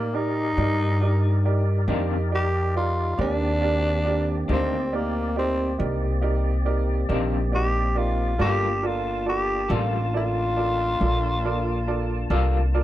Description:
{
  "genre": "slow blues",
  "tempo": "46 BPM (dotted quarters)",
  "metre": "12/8",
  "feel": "straight",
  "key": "unclear",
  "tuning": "A4 = 440 Hz",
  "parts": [
    { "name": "growling tenor saxophone", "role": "melody", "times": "0.0-12.7 s", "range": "Bb3 to G4", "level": "-26 LUFS", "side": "equal", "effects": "none" },
    { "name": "clear upright piano", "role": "accompaniment", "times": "0.0-12.8 s", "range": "D4 to D5", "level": "-29 LUFS", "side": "right 4 dB", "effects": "none" },
    { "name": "tonewheel organ", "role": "sustained chords", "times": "0.0-12.8 s", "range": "Bb3 to A5", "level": "-33 LUFS", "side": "equal", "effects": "slow rotary speaker, overdrive, chorus vibrato" },
    { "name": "upright bass", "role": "bass", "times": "0.0-12.8 s", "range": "G1 to A2", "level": "-24 LUFS", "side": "equal", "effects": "none" },
    { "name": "electric guitar through a small old amp", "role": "accompaniment", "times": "1.9-12.6 s", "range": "C3 to A4", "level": "-29 LUFS", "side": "left 7 dB", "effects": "tremolo" }
  ],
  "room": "little or no reverb",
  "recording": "dry, close 1970s-style studio recording",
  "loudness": "-21 LUFS",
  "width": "side -14 dB against mid",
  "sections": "0.0-12.8 A section",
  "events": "tenor saxophone solo 0.0-12.8",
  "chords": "0.0 Cm9; 8.4 Gm9"
}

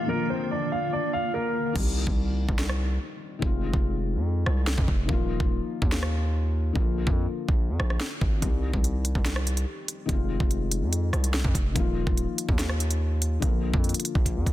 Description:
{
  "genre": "hip hop, drill",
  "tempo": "144 BPM",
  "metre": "4/4",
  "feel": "half-time",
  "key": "C minor",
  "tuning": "A4 = 440 Hz",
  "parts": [
    { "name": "dark grand piano", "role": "melody", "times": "0.0-1.7 s", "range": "Bb3 to F5", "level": "-28 LUFS", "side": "equal", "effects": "low-pass filter" },
    { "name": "felt-muted upright piano", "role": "accompaniment", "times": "0.0-14.5 s", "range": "D3 to G4", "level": "-32 LUFS", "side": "left 5 dB", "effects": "low-pass filter" },
    { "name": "granular cloud pad", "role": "sustained chords", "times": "0.0-1.7 s", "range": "D3 to F4", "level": "-34 LUFS", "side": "right 2 dB", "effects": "built-in reverb, low-pass filter" },
    { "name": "distorted 808-style bass", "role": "bass", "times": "1.8-14.5 s", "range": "Eb1 to F2", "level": "-26 LUFS", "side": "equal", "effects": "distortion" },
    { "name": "drill drum kit", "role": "drums", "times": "1.8-14.5 s", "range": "crash cymbal, hi-hat, kick drum, rim click, snare drum", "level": "-27 LUFS", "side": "equal", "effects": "none" }
  ],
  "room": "digital ambience",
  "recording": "dense, heavily limited modern master",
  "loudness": "-24 LUFS",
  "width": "side -14 dB against mid",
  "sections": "0.0-1.8 A section; 1.8-14.5 B section",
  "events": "filter sweep 0.0-1.8; hi-hats muted 1.8-8.4; drum fill 14.3",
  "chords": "0.1 Bb; 1.8 Cm; 3.4 Fm7; 5.1 Ebsus2; 6.8 Bb; 8.4 Cm; 10.1 Fm7; 11.8 Ebsus2; 13.4 Bb"
}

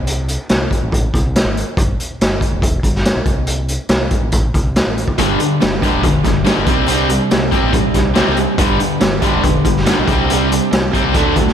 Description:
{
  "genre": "classic rock",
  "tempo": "141 BPM",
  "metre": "4/4",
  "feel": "straight",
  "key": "unclear",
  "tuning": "A4 = 442 Hz",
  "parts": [
    { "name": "growling fingered electric bass", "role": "bass", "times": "0.0-11.5 s", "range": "E1 to D2", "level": "-21 LUFS", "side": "equal", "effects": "overdrive" },
    { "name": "raw garage drum kit", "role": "drums", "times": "0.1-11.5 s", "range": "hi-hat, kick drum, snare drum", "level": "-16 LUFS", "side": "equal", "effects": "none" },
    { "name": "picked steel-string acoustic guitar", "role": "accompaniment", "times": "5.2-11.5 s", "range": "G2 to A4", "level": "-23 LUFS", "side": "right 6 dB", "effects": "slapback echo" },
    { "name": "overdriven electric guitar", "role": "riff", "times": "5.2-11.5 s", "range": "G2 to C4", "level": "-18 LUFS", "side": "left 10 dB", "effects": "none" },
    { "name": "overdriven semi-hollow guitar", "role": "riff", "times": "5.2-11.5 s", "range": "G2 to D4", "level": "-19 LUFS", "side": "right 9 dB", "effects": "slapback echo" }
  ],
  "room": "moderate lush hall reverb, RT60 1.8 s",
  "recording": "big arena sound",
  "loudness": "-13 LUFS",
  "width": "side -9 dB against mid",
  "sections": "0.0-11.5 A section",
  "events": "none",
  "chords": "0.0 N.C.; 3.3 Am; 5.2 G; 6.7 Csus2; 8.6 G; 10.1 Csus2"
}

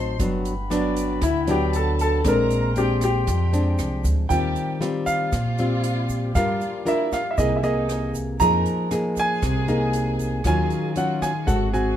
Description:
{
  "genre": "bossa nova",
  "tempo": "117 BPM",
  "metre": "4/4",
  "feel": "straight",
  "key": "Eb major from 4.3 s",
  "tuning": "A4 = 442 Hz",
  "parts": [
    { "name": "warm grand piano", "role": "melody", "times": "0.0-12.0 s", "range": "D4 to Bb5", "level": "-25 LUFS", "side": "equal", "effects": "none" },
    { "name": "warm symphonic violin section", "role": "second line", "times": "0.0-12.0 s", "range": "D#4 to C6", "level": "-34 LUFS", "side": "right 1 dB", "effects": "none" },
    { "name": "nylon-string guitar", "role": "accompaniment", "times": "0.0-12.0 s", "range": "G2 to Bb4", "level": "-24 LUFS", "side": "left 1 dB", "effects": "none" },
    { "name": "dark brass ensemble", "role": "sustained chords", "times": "0.0-12.0 s", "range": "C3 to C6", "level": "-37 LUFS", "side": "left 1 dB", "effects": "none" },
    { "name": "upright bass", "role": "bass", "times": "0.0-12.0 s", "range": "G1 to G2", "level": "-25 LUFS", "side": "right 1 dB", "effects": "none" },
    { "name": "swinging big-band drum kit", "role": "drums", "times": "0.2-11.9 s", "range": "hi-hat, kick drum, rim click", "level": "-31 LUFS", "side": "equal", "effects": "none" },
    { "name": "egg shaker", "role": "percussion", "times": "0.2-12.0 s", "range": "none", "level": "-42 LUFS", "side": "right 6 dB", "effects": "none" }
  ],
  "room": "light reverb",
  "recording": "minimal, uncompressed stereo recording",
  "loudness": "-20 LUFS",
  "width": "side -10 dB against mid",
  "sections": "0.0-4.3 A section; 4.3-12.0 B section",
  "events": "none",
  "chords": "0.2 Gmaj7; 2.2 Bb9; 4.3 Eb69; 6.4 Gm7; 7.4 C7alt; 8.4 Fm7; 10.5 Ebm9"
}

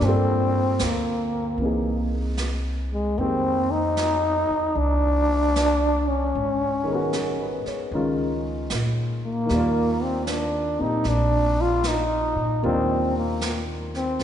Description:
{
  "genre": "jazz ballad",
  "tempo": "76 BPM",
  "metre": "4/4",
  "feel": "swing 67% on 8ths",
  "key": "Eb major",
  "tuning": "A4 = 440 Hz",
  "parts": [
    { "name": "growling trombone", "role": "melody", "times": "0.0-14.2 s", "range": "G#3 to F4", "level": "-23 LUFS", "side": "left 1 dB", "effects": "none" },
    { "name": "warm baby grand piano", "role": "accompaniment", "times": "0.0-14.2 s", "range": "Eb3 to D5", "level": "-28 LUFS", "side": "equal", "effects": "none" },
    { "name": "upright bass", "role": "bass", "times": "0.0-14.2 s", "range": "Ab1 to Bb2", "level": "-27 LUFS", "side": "equal", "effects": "none" },
    { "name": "jazz brush drum kit", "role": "drums", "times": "0.0-14.2 s", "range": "brushed snare drum, hi-hat, snare drum", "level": "-34 LUFS", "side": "right 3 dB", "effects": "none" }
  ],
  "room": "wet concert hall reverb, RT60 2.5 s",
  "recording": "recorded in a church or concert hall, nothing above 10.9 kHz",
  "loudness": "-21 LUFS",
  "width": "side -9 dB against mid",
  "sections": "0.0-14.2 A section",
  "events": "none",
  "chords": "0.0 Gm9; 1.6 C7alt; 3.2 Fm11; 6.3 Abm7; 7.9 Dbadd9; 9.5 Ebmaj9"
}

